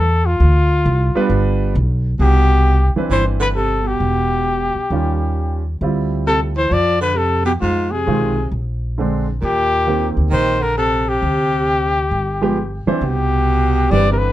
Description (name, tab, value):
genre	jazz, small-group swing and bop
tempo	133 BPM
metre	4/4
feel	swing 66% on 8ths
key	unclear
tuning	A4 = 444 Hz
part	warm trumpet	melody	0.0-14.3 s	F4 to D5	-18 LUFS	left 3 dB	none
part	upright bass	bass	0.0-14.3 s	E1 to F2	-18 LUFS	equal	none
part	warm grand piano	accompaniment	1.2-14.3 s	D3 to C5	-20 LUFS	right 3 dB	none
part	clear baritone saxophone	second line	2.2-14.3 s	Ab2 to G3	-22 LUFS	right 5 dB	none
room	light reverb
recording	dark, warm production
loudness	-15 LUFS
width	side -14 dB against mid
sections	0.0-2.2 A section; 2.2-14.3 B section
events	trumpet solo 0.0-2.2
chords	0.4 Dm7; 1.3 G7; 2.2 Cmaj9; 4.0 Em; 4.9 Eb9; 5.8 Dm11; 7.6 Fm7; 8.5 Bb9; 9.4 Eb6; 11.2 D7sus4; 12.1 G7b9; 13.0 Cmaj9